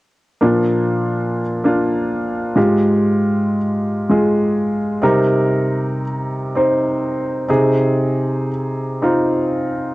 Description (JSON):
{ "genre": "pop", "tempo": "98 BPM", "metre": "4/4", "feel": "straight", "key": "unclear", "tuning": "A4 = 441 Hz", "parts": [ { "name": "warm concert grand piano", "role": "accompaniment", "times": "0.4-9.9 s", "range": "Ab2 to C5", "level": "-15 LUFS", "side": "equal", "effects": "none" } ], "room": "wet small room reverb, RT60 0.5 s", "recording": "home recording on cassette", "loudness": "-15 LUFS", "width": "side -19 dB against mid", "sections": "0.4-9.9 A section", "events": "none", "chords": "0.4 Bb; 2.6 Fmadd9/Ab; 5.0 Cm7; 7.5 Ab/C" }